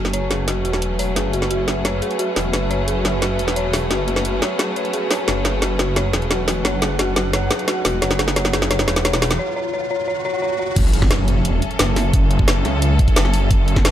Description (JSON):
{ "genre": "dark technical drum and bass", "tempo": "175 BPM", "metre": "4/4", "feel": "straight", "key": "F# minor", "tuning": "A4 = 443 Hz", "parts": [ { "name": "bright studio string section", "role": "sustained chords", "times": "0.0-13.9 s", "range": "F#3 to A4", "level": "-27 LUFS", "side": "equal", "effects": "sidechain pumping" }, { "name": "wide detuned saw bass", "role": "bass", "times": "0.0-13.9 s", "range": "E1 to C#2", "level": "-21 LUFS", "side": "equal", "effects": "chorus, overdrive, sidechain pumping" }, { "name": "drum and bass drum kit", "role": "drums", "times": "0.0-13.9 s", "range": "crash cymbal, hi-hat, snare drum", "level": "-21 LUFS", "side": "equal", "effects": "overdrive" }, { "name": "riser, swell and impact", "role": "sound effects", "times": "0.0-12.1 s", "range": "none", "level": "-29 LUFS", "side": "equal", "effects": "none" }, { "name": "airy breathy pad", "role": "texture", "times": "0.0-13.9 s", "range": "F#4 to F#5", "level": "-27 LUFS", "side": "equal", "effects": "chorus, sidechain pumping" }, { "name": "dark detuned synth bell", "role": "arpeggios", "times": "0.1-10.7 s", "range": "F#4 to C#5", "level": "-25 LUFS", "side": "left 2 dB", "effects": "chorus, sidechain pumping, dub echo" }, { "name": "electronic kick drum", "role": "drums", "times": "10.8-13.8 s", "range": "none", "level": "-17 LUFS", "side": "equal", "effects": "overdrive" } ], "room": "light reverb, digital ambience", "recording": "none", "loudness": "-16 LUFS", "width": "side -11 dB against mid", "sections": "0.0-10.8 A section; 10.8-13.9 B section", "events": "build-up 0.0-10.8; drum fill 0.0-9.4; riser 0.0-10.8; break 9.4-10.8; swell 10.1-10.8; drop 10.8-13.9; impact 10.8-12.1", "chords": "0.0 F#m" }